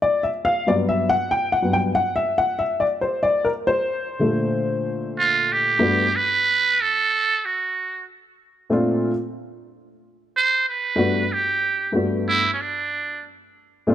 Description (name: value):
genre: hip hop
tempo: 93 BPM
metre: 4/4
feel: swing 57% on 16ths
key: G major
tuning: A4 = 440 Hz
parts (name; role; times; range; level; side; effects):
- dark upright piano; accompaniment; 0.0-13.9 s; G2 to G5; -20 LUFS; left 2 dB; none
- trumpet with metal mute; melody; 5.2-13.2 s; C#4 to C5; -19 LUFS; right 4 dB; none
room: moderate echo chamber reverb, RT60 2.3 s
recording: none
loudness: -19 LUFS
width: side -11 dB against mid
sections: 0.0-5.8 A section; 5.8-13.9 B section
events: upright piano solo 0.0-5.8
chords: 0.0 Bb (rootless); 0.7 Gmaj7; 3.2 Bbmaj9; 5.8 Gmaj9; 8.4 Bbmaj9; 11.0 Gmaj9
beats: 0.01 | 0.65 1.29 1.94 2.58 | 3.23 3.88 4.52 5.17 | 5.81 6.46 7.10 7.75 | 8.39 9.04 9.68 10.33 | 10.97 11.62 12.26 12.91 | 13.55